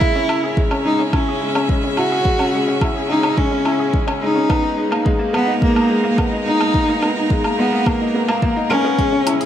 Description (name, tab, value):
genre	piano and strings electronica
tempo	107 BPM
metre	4/4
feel	straight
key	unclear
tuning	A4 = 441 Hz
part	warm cello	melody	0.0-9.5 s	A#3 to F#4	-19 LUFS	equal	none
part	clear string quartet	sustained chords	0.0-9.5 s	C#3 to E5	-25 LUFS	left 1 dB	sidechain pumping
part	bright upright piano	riff	0.0-9.5 s	G#3 to A#4	-21 LUFS	left 1 dB	tape echo
part	electronic kick drum	drums	0.0-9.1 s	none	-19 LUFS	equal	none
part	electronic woodblock and hi-hat	drums	0.3-9.5 s	none	-26 LUFS	left 1 dB	none
part	riser	sound effects	9.2-9.5 s	none	-33 LUFS	right 1 dB	none
room	light reverb, digital ambience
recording	none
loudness	-15 LUFS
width	side -10 dB against mid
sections	0.0-9.5 A section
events	build-up 0.0-9.5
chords	0.0 C#m; 4.5 G#madd9